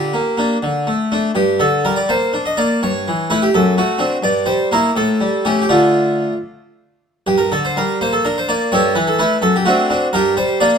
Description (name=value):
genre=classical, baroque-style suite movement for harpsichord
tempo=76-87 BPM (dotted quarters)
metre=6/8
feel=rubato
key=G minor, D minor from 4.2 s, G minor from 7.3 s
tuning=A4 = 436 Hz
part: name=harpsichord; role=solo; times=0.0-10.8 s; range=F#2 to Eb5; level=-14 LUFS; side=equal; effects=none
room=moderate stone room reverb, RT60 1.2 s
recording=none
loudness=-14 LUFS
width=side -6 dB against mid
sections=0.0-7.3 A section; 7.3-10.8 A section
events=none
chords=0.0 Gm/D; 0.6 D5; 1.4 Gm; 2.8 A7/G; 3.5 D7/F#; 4.2 Edim/G; 4.9 A7; 5.7 Dm; 7.3 Gm; 8.7 A5/G; 9.4 D7/F#; 10.1 Gm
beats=0.63 | 1.36 2.09 | 2.80 3.52 | 4.22 4.95 | 5.70 6.49 | 7.27 8.00 | 8.71 9.41 | 10.12